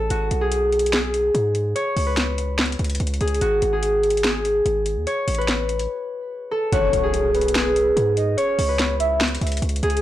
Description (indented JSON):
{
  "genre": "hip hop, trap",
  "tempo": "145 BPM",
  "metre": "4/4",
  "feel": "half-time",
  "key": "G# phrygian",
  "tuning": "A4 = 439 Hz",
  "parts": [
    { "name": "concert harp", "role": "melody", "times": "0.0-10.0 s", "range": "F#4 to C#5", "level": "-22 LUFS", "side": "equal", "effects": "none" },
    { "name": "hard-hitting 808-style bass", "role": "bass", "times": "0.0-10.0 s", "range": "G#1 to G#2", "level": "-24 LUFS", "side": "equal", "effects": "none" },
    { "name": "trap drum kit", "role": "drums", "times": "0.1-10.0 s", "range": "hi-hat, snare drum", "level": "-25 LUFS", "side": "equal", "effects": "vintage 12-bit sampler grit" },
    { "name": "soft octave-layered synth lead", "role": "second line", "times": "6.7-9.2 s", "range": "B4 to E5", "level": "-24 LUFS", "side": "left 1 dB", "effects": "chorus, phaser, digital delay" },
    { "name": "impact", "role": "sound effects", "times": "6.7-8.4 s", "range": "none", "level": "-30 LUFS", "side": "right 2 dB", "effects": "none" }
  ],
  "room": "light reverb, digital ambience",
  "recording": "blown-out, overdriven recording, overdrive",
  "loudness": "-18 LUFS",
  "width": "side -13 dB against mid",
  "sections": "0.0-6.7 A section; 6.7-10.0 B section",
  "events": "break 5.9-6.7; impact 6.7-8.4",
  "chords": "0.1 G#m; 1.8 G#madd11/C#; 3.4 G#5; 5.1 Aadd9; 6.7 G#m; 8.4 C#m7"
}